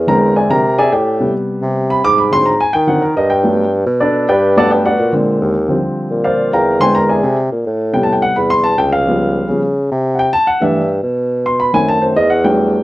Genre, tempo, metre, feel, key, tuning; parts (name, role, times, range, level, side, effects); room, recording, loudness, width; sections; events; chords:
Afro-Cuban jazz; 213 BPM; 4/4; straight; A4 = 440 Hz
dark bassoon; bass; 0.0-12.8 s; C#2 to Eb3; -16 LUFS; equal
dark baby grand piano; accompaniment; 0.1-12.8 s; C3 to D6; -13 LUFS; equal
moderate club ambience, RT60 0.5 s; dark, warm production; -12 LUFS; side -17 dB against mid
0.0-5.7 A section; 5.7-12.8 A section
grand piano solo 0.0-12.8
0.1 E7alt; 1.2 Am9 (rootless); 2.3 Ab7#11; 3.5 Gmaj9; 5.1 Bb7; 5.7 Ebmaj13 (rootless); 6.8 E7b13; 7.9 Am9; 9.1 C#7#11; 10.2 C6 (rootless); 11.3 B7b9